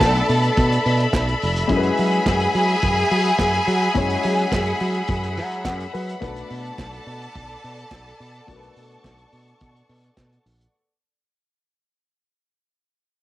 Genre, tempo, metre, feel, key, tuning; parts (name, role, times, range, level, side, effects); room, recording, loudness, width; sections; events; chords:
disco; 106 BPM; 4/4; straight; B dorian; A4 = 440 Hz
rich studio violin section; second line; 0.0-10.4 s; G#4 to A5; -24 LUFS; equal; cassette tape
warm grand piano; accompaniment; 0.0-10.8 s; G#3 to F#5; -28 LUFS; left 6 dB; cassette tape
clear studio string section; sustained chords; 0.0-10.7 s; G#4 to C#6; -25 LUFS; left 1 dB; cassette tape
fingered electric bass; bass; 0.0-10.7 s; E#1 to F#3; -23 LUFS; right 1 dB
vintage drum kit; drums; 0.0-10.7 s; hi-hat, kick drum, snare drum; -26 LUFS; equal; cassette tape
group handclap; percussion; 0.0-10.3 s; -38 LUFS; right 8 dB
light reverb; home recording on cassette; -18 LUFS; side -15 dB against mid
0.0-10.7 A section
fade-out 0.0-10.7; grand piano fill 5.4-6.2
0.0 Bm7; 1.7 F#9sus4; 6.2 Bm7